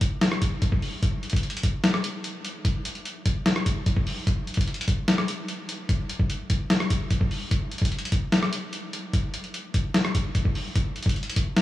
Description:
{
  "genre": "hip hop",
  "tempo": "148 BPM",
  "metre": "4/4",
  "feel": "half-time",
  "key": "none",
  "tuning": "none",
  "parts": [
    { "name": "lo-fi sampler-style drum kit", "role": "drums", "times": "0.0-11.6 s", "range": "hi-hat, kick drum, rim click, snare drum", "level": "-23 LUFS", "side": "equal", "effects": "none" }
  ],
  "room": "moderate huge ambient reverb, RT60 7.2 s",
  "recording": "small room ambience",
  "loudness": "-23 LUFS",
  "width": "side -15 dB against mid",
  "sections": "0.0-10.8 A section",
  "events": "none",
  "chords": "none"
}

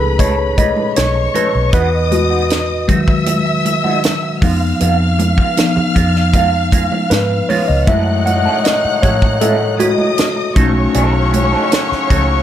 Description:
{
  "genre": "lush 1970s-style soul",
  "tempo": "78 BPM",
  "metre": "4/4",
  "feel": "straight",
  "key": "F# dorian",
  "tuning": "A4 = 437 Hz",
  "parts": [
    { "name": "warm studio string section", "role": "second line", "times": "0.0-12.4 s", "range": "B4 to F#6", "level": "-20 LUFS", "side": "left 2 dB", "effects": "none" },
    { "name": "mellow tine electric piano", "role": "accompaniment", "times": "0.0-12.4 s", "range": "D#3 to F#5", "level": "-17 LUFS", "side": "left 2 dB", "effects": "medium stereo tremolo" },
    { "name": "electric guitar through a small old amp", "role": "riff", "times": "0.0-12.3 s", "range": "G#3 to B4", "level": "-23 LUFS", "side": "right 6 dB", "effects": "wah, spring reverb" },
    { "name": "vintage muted fingered electric bass", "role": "bass", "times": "0.0-12.4 s", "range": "B1 to A2", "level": "-17 LUFS", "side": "equal", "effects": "none" },
    { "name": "tight funk drum kit", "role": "drums", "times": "0.2-12.3 s", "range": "hi-hat, kick drum, snare drum", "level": "-16 LUFS", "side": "equal", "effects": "none" },
    { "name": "congas", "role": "percussion", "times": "0.2-12.3 s", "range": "none", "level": "-24 LUFS", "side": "right 4 dB", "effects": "none" },
    { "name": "warm horn section", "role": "stabs", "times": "7.9-12.4 s", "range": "A2 to D#4", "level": "-21 LUFS", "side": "left 1 dB", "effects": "none" }
  ],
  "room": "light reverb, small room ambience",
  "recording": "none",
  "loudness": "-12 LUFS",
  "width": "side -11 dB against mid",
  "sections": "0.0-12.4 A section",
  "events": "tine electric piano solo 0.0-12.4",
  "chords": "0.0 B9; 1.7 Emaj9; 4.4 C#7/E#; 7.9 F#m7; 10.6 B9"
}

